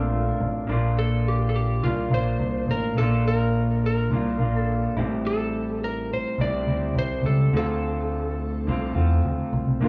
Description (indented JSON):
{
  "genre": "indie pop, bedroom pop",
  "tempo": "105 BPM",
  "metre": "4/4",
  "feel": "straight",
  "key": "Bb lydian",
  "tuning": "A4 = 438 Hz",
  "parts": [
    { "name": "electric guitar through a small old amp", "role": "accompaniment", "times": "0.0-9.9 s", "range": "A2 to F4", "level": "-30 LUFS", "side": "equal", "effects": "warbly pitch drift" },
    { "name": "warbly lo-fi synth keys", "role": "accompaniment", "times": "0.0-0.7, 9.8-9.9 s", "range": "Bb3 to A5", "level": "-32 LUFS", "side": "equal", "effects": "chorus" },
    { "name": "picked electric bass", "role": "bass", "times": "0.0-9.9 s", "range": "A1 to E2", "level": "-26 LUFS", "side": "equal", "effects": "none" },
    { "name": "electric slide guitar", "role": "melody", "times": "1.0-9.2 s", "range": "F4 to D5", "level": "-32 LUFS", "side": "equal", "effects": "tape echo" }
  ],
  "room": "wet studio reverb, RT60 0.8 s",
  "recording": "band playing live in one room, studio reverb",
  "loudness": "-24 LUFS",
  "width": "mono",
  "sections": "0.7-9.9 A section",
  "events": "none",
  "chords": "0.0 Bbmaj7; 5.0 Am7; 7.5 Dm7"
}